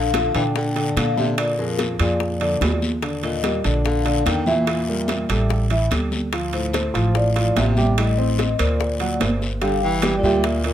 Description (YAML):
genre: Afro-Cuban jazz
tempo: 146 BPM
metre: 4/4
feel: straight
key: D minor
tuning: A4 = 440 Hz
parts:
  - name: vibraphone with soft mallets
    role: melody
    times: 0.0-10.7 s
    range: Bb4 to G5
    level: -26 LUFS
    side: left 2 dB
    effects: none
  - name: breathy baritone saxophone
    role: second line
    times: 0.0-10.7 s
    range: F2 to E3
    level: -27 LUFS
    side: left 2 dB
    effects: none
  - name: warm concert grand piano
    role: accompaniment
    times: 0.0-10.7 s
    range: D3 to G5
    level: -24 LUFS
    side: right 2 dB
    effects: none
  - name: upright bass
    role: bass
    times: 0.0-10.7 s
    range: G1 to Bb2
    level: -23 LUFS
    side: equal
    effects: none
  - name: bongos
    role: percussion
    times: 0.1-10.6 s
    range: none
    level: -30 LUFS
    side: left 8 dB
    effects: none
  - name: congas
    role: percussion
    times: 0.1-10.7 s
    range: none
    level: -28 LUFS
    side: equal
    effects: none
  - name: timbales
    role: percussion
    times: 0.1-10.7 s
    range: none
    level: -29 LUFS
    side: right 7 dB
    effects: none
  - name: guiro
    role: percussion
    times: 0.2-10.7 s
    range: none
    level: -34 LUFS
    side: left 5 dB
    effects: none
room: light reverb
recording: close, detailed microphones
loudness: -18 LUFS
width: side -11 dB against mid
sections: 0.0-9.6 A section; 9.6-10.7 B section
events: none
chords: 0.0 Bbmaj7; 1.4 Bb7; 3.0 Ebmaj9; 4.7 Edim; 5.5 A5; 6.3 Dm9; 8.0 Am7b5; 8.8 Daug7; 9.6 Gm